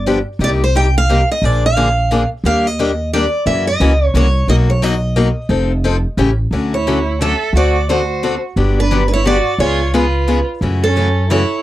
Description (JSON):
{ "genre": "acoustic string swing (jazz manouche)", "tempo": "176 BPM", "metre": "3/4", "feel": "swing 62% on 8ths", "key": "Bb major, D major from 6.5 s", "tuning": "A4 = 439 Hz", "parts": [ { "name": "picked steel-string acoustic guitar", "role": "melody", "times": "0.0-11.6 s", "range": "A4 to G5", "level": "-18 LUFS", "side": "right 1 dB", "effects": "none" }, { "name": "upright bass", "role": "bass", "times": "0.0-11.4 s", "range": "F1 to Gb2", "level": "-16 LUFS", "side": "equal", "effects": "none" }, { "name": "picked steel-string acoustic guitar", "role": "accompaniment", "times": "0.1-11.4 s", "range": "B2 to A4", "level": "-18 LUFS", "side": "left 3 dB", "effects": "none" }, { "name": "warm violin", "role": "second line", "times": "6.7-11.6 s", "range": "C#4 to A4", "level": "-21 LUFS", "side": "right 6 dB", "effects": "none" } ], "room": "little or no reverb", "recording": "dry, close 1970s-style studio recording", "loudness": "-13 LUFS", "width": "side -14 dB against mid", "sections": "0.0-6.5 A section; 6.5-11.6 B section", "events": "none", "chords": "0.4 Cm7; 1.4 Bb7; 2.4 Ebmaj7; 3.5 Gb7; 4.5 Bmaj7; 5.5 F7; 6.2 A7; 6.5 Dmaj9; 7.5 D7; 8.6 Gmaj7; 9.6 C#7; 10.6 F#m7", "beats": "0.06 | 0.40 0.74 1.08 | 1.42 1.76 2.10 | 2.44 2.78 3.12 | 3.46 3.80 4.14 | 4.48 4.82 5.16 | 5.50 5.84 6.18 | 6.53 6.87 7.21 | 7.55 7.89 8.23 | 8.57 8.91 9.25 | 9.59 9.93 10.27 | 10.61 10.96 11.30" }